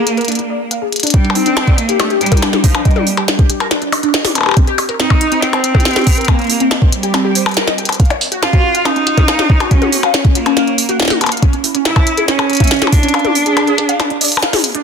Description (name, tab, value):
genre	IDM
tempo	140 BPM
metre	4/4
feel	straight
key	unclear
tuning	A4 = 440 Hz
part	bright cello	melody	0.0-14.4 s	F3 to F4	-17 LUFS	right 3 dB	digital delay
part	warbly dusty pluck	arpeggios	0.0-14.8 s	C4 to G5	-18 LUFS	left 2 dB	phaser, lush chorus, cassette tape, digital delay
part	glitchy drum kit	drums	0.1-14.8 s	hi-hat, percussion blips, snare drum, toms	-16 LUFS	left 2 dB	soft clipping on snare, tape echo
part	electronic kick drum	drums	1.1-13.0 s	none	-11 LUFS	equal	none
room	light reverb, digital ambience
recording	dense, heavily limited modern master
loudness	-11 LUFS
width	side -6 dB against mid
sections	0.0-1.1 A section; 1.1-14.8 B section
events	kick drops out 13.1-14.8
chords	0.0 Bb7; 1.1 Ebmaj7; 4.6 Cm; 8.0 Gbmaj7; 11.4 Dbm; 13.1 Ddim